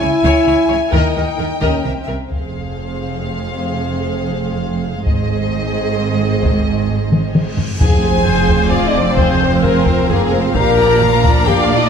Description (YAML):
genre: cinematic, epic orchestral film score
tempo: 131 BPM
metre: 3/4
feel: straight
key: F minor, F dorian from 7.8 s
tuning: A4 = 443 Hz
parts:
  - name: warm symphonic violin section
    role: melody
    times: 0.0-11.9 s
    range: Ab4 to Ab5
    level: -25 LUFS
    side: left 4 dB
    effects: none
  - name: warm symphonic violin section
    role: second line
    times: 0.0-11.9 s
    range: Bb4 to Bb5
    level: -25 LUFS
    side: left 4 dB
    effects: none
  - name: rich symphonic viola section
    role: accompaniment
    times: 0.0-11.9 s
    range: F4 to D5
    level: -23 LUFS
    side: left 1 dB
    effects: none
  - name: mellow French horn section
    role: sustained chords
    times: 0.0-11.9 s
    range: C3 to Bb4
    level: -19 LUFS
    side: left 2 dB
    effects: none
  - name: rich studio double bass section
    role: bass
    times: 0.0-11.9 s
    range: F1 to Eb2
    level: -21 LUFS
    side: right 4 dB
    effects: none
  - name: warm symphonic cello section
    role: bass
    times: 0.0-11.9 s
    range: F2 to Eb3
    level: -22 LUFS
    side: right 4 dB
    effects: none
  - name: taiko ensemble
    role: drums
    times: 0.2-11.7 s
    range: none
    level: -18 LUFS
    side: left 1 dB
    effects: none
  - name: cymbal swell and sub drop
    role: sound effects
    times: 7.4-9.2 s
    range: none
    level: -26 LUFS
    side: left 1 dB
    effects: none
  - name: bright trombone section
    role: sustained chords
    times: 7.8-11.9 s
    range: F3 to D4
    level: -25 LUFS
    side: right 3 dB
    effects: none
  - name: warm symphonic string section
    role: sustained chords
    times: 7.8-11.9 s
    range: C4 to F5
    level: -23 LUFS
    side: left 2 dB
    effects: none
  - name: timpani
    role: percussion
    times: 7.8-8.4 s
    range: F2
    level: -22 LUFS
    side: left 1 dB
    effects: none
room: moderate recital hall reverb, RT60 1.7 s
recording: none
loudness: -13 LUFS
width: side -7 dB against mid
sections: 0.0-2.3 A section; 2.3-7.8 B section; 7.8-11.9 C section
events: drum fill 7.1-7.8; cymbal swell 7.4-7.8; impact 7.8-9.2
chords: 0.0 Dbm; 0.9 Eb; 1.9 C7(no3); 2.3 Fm; 5.1 Ab; 7.8 Fm; 10.6 Bb